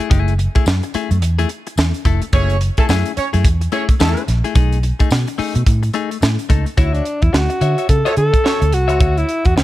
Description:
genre	funk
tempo	108 BPM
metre	4/4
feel	swing 60% on 16ths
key	unclear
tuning	A4 = 440 Hz
part	clean electric guitar	accompaniment	0.0-9.6 s	A3 to E5	-23 LUFS	left 9 dB	none
part	crisp fusion drum kit	drums	0.0-9.6 s	hi-hat, kick drum, snare drum	-17 LUFS	equal	none
part	vintage muted fingered electric bass	bass	0.1-9.6 s	E#1 to D3	-16 LUFS	equal	none
part	tambourine	percussion	0.7-6.4 s	none	-32 LUFS	left 5 dB	none
part	warm horn section	second line	2.3-4.2, 8.1-8.6 s	A3 to C#5	-24 LUFS	right 4 dB	none
part	breathy alto saxophone	melody	6.8-9.6 s	C#4 to A4	-18 LUFS	equal	none
room	small room ambience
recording	none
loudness	-14 LUFS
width	side -15 dB against mid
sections	0.0-6.8 A section; 6.8-9.6 B section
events	none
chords	0.0 F#m9; 4.6 B13; 6.8 Dmaj9

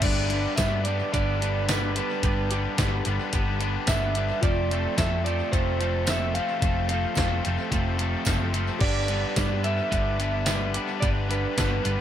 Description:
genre	indie rock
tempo	109 BPM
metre	4/4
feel	straight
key	G mixolydian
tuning	A4 = 440 Hz
part	electric guitar through a small old amp	melody	0.0-12.0 s	G4 to F5	-30 LUFS	right 3 dB	tape echo
part	bell-like tine electric piano	second line	0.0-12.0 s	D4 to G4	-39 LUFS	left 8 dB	wide subtle chorus, tape echo
part	overdriven electric guitar	riff	0.0-12.0 s	F2 to D4	-31 LUFS	left 10 dB	none
part	twelve-string electric guitar	riff	0.0-12.0 s	F3 to B4	-32 LUFS	right 8 dB	analog chorus, tape echo
part	hollow-body short-scale picked electric bass	bass	0.0-12.0 s	F1 to G2	-28 LUFS	equal	none
part	detuned 8-bit digital drum machine	drums	0.0-12.0 s	crash cymbal, hi-hat, kick drum, snare drum, tambourine	-28 LUFS	equal	none
part	tambourine	percussion	0.6-11.7 s	none	-40 LUFS	right 15 dB	tape echo
room	light reverb, digital ambience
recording	echo-heavy mix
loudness	-23 LUFS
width	side -10 dB against mid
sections	0.0-12.0 A section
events	none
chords	0.0 G; 4.4 F; 8.8 G

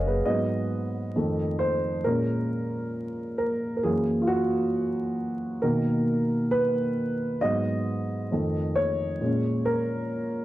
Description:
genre	hip hop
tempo	67 BPM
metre	4/4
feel	swing 57% on 16ths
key	G# dorian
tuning	A4 = 440 Hz
part	dark upright piano	accompaniment	0.0-10.4 s	F2 to G#5	-24 LUFS	equal	plate reverb
room	wet studio reverb, RT60 0.5 s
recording	vinyl crackle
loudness	-24 LUFS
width	side -15 dB against mid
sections	0.3-10.4 A section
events	upright piano fill 0.0; upright piano solo 0.3-10.4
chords	0.3 G#m7; 1.1 F7; 2.0 A#m7; 3.8 F#7; 5.6 Bmaj7; 7.4 G#m7; 8.3 F7; 9.2 A#m7

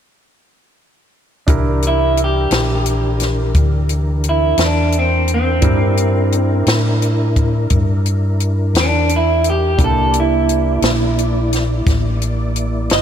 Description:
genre	slow blues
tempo	58 BPM (dotted quarters)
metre	12/8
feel	straight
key	C mixolydian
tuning	A4 = 439 Hz
part	warm concert grand piano	accompaniment	1.5-13.0 s	Bb3 to Bb4	-26 LUFS	right 5 dB	slapback echo
part	mellow tonewheel organ	sustained chords	1.5-13.0 s	E3 to D5	-24 LUFS	left 1 dB	slow rotary speaker, chorus vibrato
part	fingered electric bass	bass	1.5-13.0 s	G1 to A2	-17 LUFS	equal	none
part	compact cocktail drum kit	drums	1.5-13.0 s	hi-hat, kick drum, snare drum	-18 LUFS	left 1 dB	none
part	electric guitar through a small old amp	melody	1.9-13.0 s	C4 to Eb5	-18 LUFS	right 2 dB	slapback echo
room	light reverb, studio reverb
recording	none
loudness	-13 LUFS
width	side -9 dB against mid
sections	1.5-13.0 A section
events	clean electric guitar solo 1.5-13.0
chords	1.5 C9

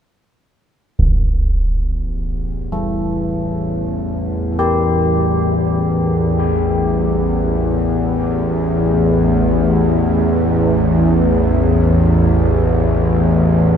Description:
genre	dark ambient drone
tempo	free time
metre	none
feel	none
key	unclear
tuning	A4 = 440 Hz
part	bowed-like drone	drone	1.7-13.8 s	A1 to E2	-14 LUFS	equal	built-in reverb
part	concert bass drum	percussion	1.0-1.2 s	none	-18 LUFS	right 1 dB	low-pass filter on kick
part	carillon bells	arpeggios	2.7-11.8 s	E3 to G4	-23 LUFS	left 2 dB	tape echo
room	moderate huge ambient reverb, RT60 7.9 s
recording	none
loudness	-14 LUFS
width	side -8 dB against mid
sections	1.0-13.8 A section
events	none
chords	1.0 A5

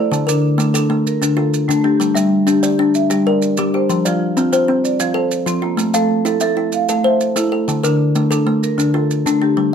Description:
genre	southern african traditional, mbira-style interlocking cycle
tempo	127 BPM (dotted quarters)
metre	12/8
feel	straight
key	unclear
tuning	A4 = 441 Hz
part	kalimba	arpeggios	0.0-9.7 s	D3 to F5	-16 LUFS	left 3 dB	none
part	marimba with medium hard mallets	arpeggios	0.0-9.7 s	D3 to F5	-18 LUFS	right 3 dB	slapback echo
part	maracas	percussion	0.1-9.4 s	none	-26 LUFS	right 8 dB	none
room	light reverb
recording	dark, warm production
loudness	-14 LUFS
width	side -7 dB against mid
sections	0.0-9.6 A section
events	none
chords	0.1 Dm; 2.0 Gm; 3.9 F; 5.8 Am; 7.7 Dm

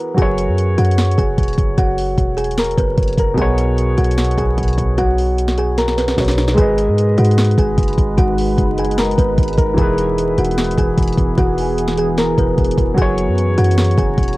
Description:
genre	hip hop, trap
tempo	150 BPM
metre	4/4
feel	half-time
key	G# minor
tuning	A4 = 440 Hz
part	kalimba	melody	0.0-14.4 s	B3 to A#5	-19 LUFS	equal	low-pass filter, cassette tape, tape echo
part	dark baby grand piano	accompaniment	0.0-14.4 s	B2 to D#5	-22 LUFS	equal	low-pass filter, cassette tape
part	hard-hitting 808-style bass	bass	0.2-14.4 s	E1 to G#2	-18 LUFS	equal	tube saturation
part	trap drum kit	drums	0.2-14.4 s	hi-hat, kick drum, snare drum	-19 LUFS	equal	none
part	deep dark ambient pad	sustained chords	7.7-14.4 s	E3 to A#5	-23 LUFS	equal	chorus, built-in reverb, cassette tape
room	little or no reverb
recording	home recording on cassette, vinyl crackle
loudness	-13 LUFS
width	side -19 dB against mid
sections	0.0-6.6 A section; 6.6-14.4 B section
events	break 0.0; drum fill 5.8-6.6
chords	0.2 F#; 3.4 Bsus2; 6.6 G#m; 9.8 E; 13.0 F#

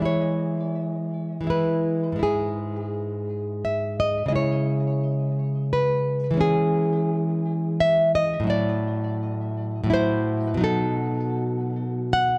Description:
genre	romantic piece for solo classical guitar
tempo	85 BPM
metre	3/4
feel	rubato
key	E major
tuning	A4 = 437 Hz
part	nylon-string guitar	solo	0.0-12.4 s	G#2 to F#5	-24 LUFS	equal	none
room	moderate recital hall reverb, RT60 1.4 s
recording	dark, warm production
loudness	-24 LUFS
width	mono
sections	0.1-12.4 A section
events	none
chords	0.1 E; 2.2 E/G#; 4.3 C#m; 6.4 C#m/E; 8.5 F#m7b5/A; 10.6 B7

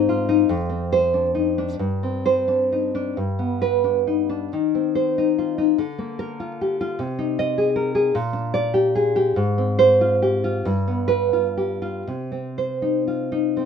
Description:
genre	romantic piece for solo classical guitar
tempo	39-54 BPM (dotted quarters)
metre	6/8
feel	rubato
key	unclear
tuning	A4 = 436 Hz
part	nylon-string guitar	solo	0.0-13.7 s	F2 to Eb5	-19 LUFS	equal	none
room	light reverb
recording	minimal, uncompressed stereo recording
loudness	-19 LUFS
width	side -7 dB against mid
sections	0.0-13.7 A section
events	none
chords	0.5 Dm7/F; 1.8 Gsus4; 3.2 G; 4.5 Cm/Eb; 5.8 Bb/D; 7.0 Ab/C; 8.1 Gm/Bb; 9.4 Fm/Ab; 10.7 G7; 12.1 Cm

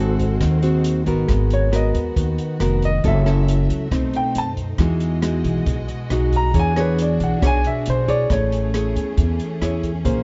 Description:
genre	bossa nova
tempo	137 BPM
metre	4/4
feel	straight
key	G# minor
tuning	A4 = 440 Hz
part	warm grand piano	melody	0.0-9.1 s	A#4 to A#5	-26 LUFS	equal	none
part	mellow wooden-headed alto flute	second line	0.0-1.1 s	G#4 to A4	-36 LUFS	equal	none
part	nylon-string guitar	accompaniment	0.0-10.2 s	B2 to C#5	-24 LUFS	equal	none
part	warm symphonic violin section	sustained chords	0.0-10.2 s	G#3 to E5	-37 LUFS	equal	none
part	upright bass	bass	0.0-10.2 s	E#1 to F#2	-24 LUFS	equal	none
part	open jazz drum kit	drums	0.2-10.2 s	hi-hat, kick drum, rim click	-28 LUFS	equal	none
room	little or no reverb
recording	dark, warm production, nothing above 7.5 kHz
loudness	-20 LUFS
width	mono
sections	0.0-1.3 A section; 1.3-10.2 B section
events	grand piano solo 1.3-10.2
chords	0.0 G#7b9; 1.3 G#m9; 3.0 F#m7; 3.9 B7b9; 4.8 Emaj9; 6.5 E13; 8.3 Amaj7

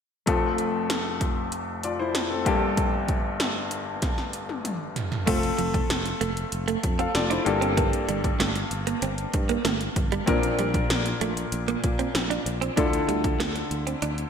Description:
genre	1980s-style pop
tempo	96 BPM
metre	4/4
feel	straight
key	F major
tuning	A4 = 443 Hz
part	clear baby grand piano	accompaniment	0.3-14.3 s	F1 to F5	-27 LUFS	left 3 dB	none
part	80s electronic pad drums	drums	0.3-14.3 s	crash cymbal, hi-hat, kick drum, snare drum, toms	-27 LUFS	right 1 dB	gated reverb on snare and toms
part	direct-recorded clean electric guitar	riff	5.3-14.1 s	F3 to D4	-30 LUFS	right 7 dB	lush chorus, ping-pong delay
part	sustaining fretless electric bass	bass	5.3-14.2 s	F1 to Bb2	-31 LUFS	right 1 dB	none
room	wet lush hall reverb, RT60 1.6 s, digital ambience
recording	bright 1980s-style digital production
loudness	-23 LUFS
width	side -7 dB against mid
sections	0.3-5.3 A section; 5.3-14.3 B section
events	drum fill 4.0-5.3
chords	0.3 F; 2.5 Gmadd9; 5.3 F; 7.5 Gmadd9; 10.3 Bbadd9; 12.8 Dmadd9

